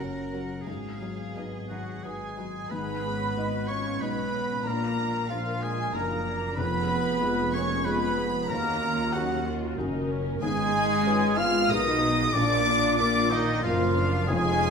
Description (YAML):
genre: cinematic, emotional film score for orchestra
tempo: 93 BPM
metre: 3/4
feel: rubato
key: unclear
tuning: A4 = 439 Hz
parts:
  - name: warm symphonic violin section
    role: melody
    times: 0.0-14.7 s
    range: Eb5 to F6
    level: -34 LUFS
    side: left 2 dB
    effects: none
  - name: warm symphonic violin section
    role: second line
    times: 0.0-14.7 s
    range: Eb4 to F6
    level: -36 LUFS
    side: right 1 dB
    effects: none
  - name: dark symphonic viola section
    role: accompaniment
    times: 0.0-14.7 s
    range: Gb3 to Bb4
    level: -35 LUFS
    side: right 1 dB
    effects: none
  - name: felt-muted upright piano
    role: accompaniment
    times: 0.0-14.7 s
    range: F1 to Eb5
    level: -32 LUFS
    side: left 3 dB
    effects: none
  - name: mellow French horn section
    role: sustained chords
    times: 0.0-14.7 s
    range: Eb3 to F4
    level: -32 LUFS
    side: left 2 dB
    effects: none
  - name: dark symphonic double bass section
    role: bass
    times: 0.0-14.7 s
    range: F1 to Eb2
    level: -36 LUFS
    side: right 2 dB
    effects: none
  - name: warm chamber cello section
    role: bass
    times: 0.0-14.7 s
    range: Eb2 to Bb4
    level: -34 LUFS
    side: right 3 dB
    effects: none
  - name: bright clarinet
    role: second line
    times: 1.7-14.7 s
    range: Eb4 to F5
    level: -34 LUFS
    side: equal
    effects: none
  - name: mellow hollow silver concert flute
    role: second line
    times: 1.7-14.7 s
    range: Eb5 to F6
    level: -35 LUFS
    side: left 1 dB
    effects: none
  - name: warm oboe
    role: second line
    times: 1.7-14.7 s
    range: Eb4 to F5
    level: -33 LUFS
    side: right 3 dB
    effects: none
room: wet scoring stage reverb, RT60 1.6 s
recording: minimal, uncompressed stereo recording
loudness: -24 LUFS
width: side -6 dB against mid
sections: 0.0-2.7 A section; 2.7-14.7 B section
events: none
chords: 0.0 Gb; 0.7 Abm7; 2.7 Abm; 4.7 Bb; 6.6 Fdim; 8.5 Ebm7; 10.4 Abm; 12.4 Bb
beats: | 0.67 1.35 2.04 | 2.71 3.36 4.01 | 4.65 5.30 5.95 | 6.58 7.22 7.86 | 8.50 9.15 9.79 | 10.42 11.06 11.70 | 12.35 13.00 13.65 | 14.29